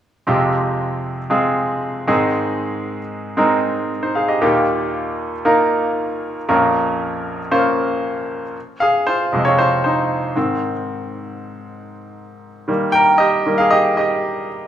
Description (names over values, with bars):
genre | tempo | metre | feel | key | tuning
pop | 116 BPM | 4/4 | straight | F minor | A4 = 440 Hz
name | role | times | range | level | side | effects
bright baby grand piano | accompaniment | 0.3-14.7 s | Bb1 to G5 | -16 LUFS | equal | none
room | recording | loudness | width
moderate lush hall reverb, RT60 2.5 s | rough home demo mix, small room reverb | -16 LUFS | side -10 dB against mid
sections
0.3-8.6 A section; 8.6-14.7 B section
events
grand piano solo 8.6-14.7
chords
0.3 Fmadd9; 2.1 Ab; 4.4 Ebadd9; 6.5 Bbm; 8.6 Fm; 10.4 Ab; 12.7 Eb